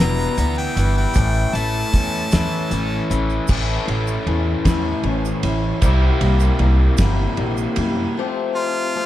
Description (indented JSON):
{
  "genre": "folk rock and heartland rock",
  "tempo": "51 BPM (dotted quarters)",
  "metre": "6/8",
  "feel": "straight",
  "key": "unclear",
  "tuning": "A4 = 436 Hz",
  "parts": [
    { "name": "bright harmonica", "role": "melody", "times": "0.0-3.1, 8.6-9.1 s", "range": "F4 to Bb5", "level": "-24 LUFS", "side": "left 1 dB", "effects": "none" },
    { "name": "picked swing-style acoustic guitar", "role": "accompaniment", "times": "0.0-9.1 s", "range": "E2 to G4", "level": "-25 LUFS", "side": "left 7 dB", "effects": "none" },
    { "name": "mellow tonewheel organ", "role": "sustained chords", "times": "0.0-9.1 s", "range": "B3 to C#5", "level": "-32 LUFS", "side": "equal", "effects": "slow rotary speaker" },
    { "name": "overdriven electric guitar", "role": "riff", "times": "0.0-8.1 s", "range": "E2 to A4", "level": "-25 LUFS", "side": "right 1 dB", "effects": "none" },
    { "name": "upright bass", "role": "bass", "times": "0.0-8.0 s", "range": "E1 to F#2", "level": "-19 LUFS", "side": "equal", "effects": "none" },
    { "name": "damped 70s drum kit", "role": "drums", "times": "0.0-7.9 s", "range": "crash cymbal, hi-hat, kick drum, ride cymbal, snare drum", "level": "-23 LUFS", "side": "equal", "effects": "none" },
    { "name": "tube shaker", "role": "percussion", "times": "0.4-7.9 s", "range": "none", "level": "-39 LUFS", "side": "right 11 dB", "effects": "none" }
  ],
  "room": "light reverb",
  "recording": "dark, warm production",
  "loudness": "-17 LUFS",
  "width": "side -13 dB against mid",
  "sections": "0.0-3.5 A section; 3.5-8.2 B section",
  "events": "harmonica solo 0.0-3.5",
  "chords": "0.0 Em; 1.2 A; 5.8 C7; 8.2 Fadd9"
}